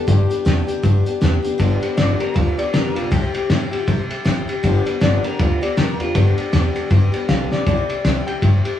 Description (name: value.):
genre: rockabilly.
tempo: 158 BPM.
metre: 4/4.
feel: swing 60% on 8ths.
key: G mixolydian.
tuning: A4 = 440 Hz.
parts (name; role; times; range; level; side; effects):
electric guitar through a small old amp; melody; 0.0-8.8 s; F4 to G5; -26 LUFS; left 1 dB; none.
picked steel-string acoustic guitar; accompaniment; 0.0-8.8 s; G2 to G4; -24 LUFS; left 4 dB; none.
upright bass; bass; 0.0-8.7 s; G1 to C3; -19 LUFS; equal; none.
cloth-damped thuddy drum kit; drums; 0.1-8.7 s; hi-hat, kick drum, ride cymbal, snare drum; -20 LUFS; left 1 dB; none.
room: moderate stone room reverb, RT60 1.0 s.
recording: band playing live in one room, studio reverb.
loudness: -16 LUFS.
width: side -11 dB against mid.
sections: 0.0-1.6 A section; 1.6-8.8 B section.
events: clean electric guitar solo 1.6-8.8; drum fill 7.5.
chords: 0.0 G; 3.1 C; 4.6 G; 7.7 C.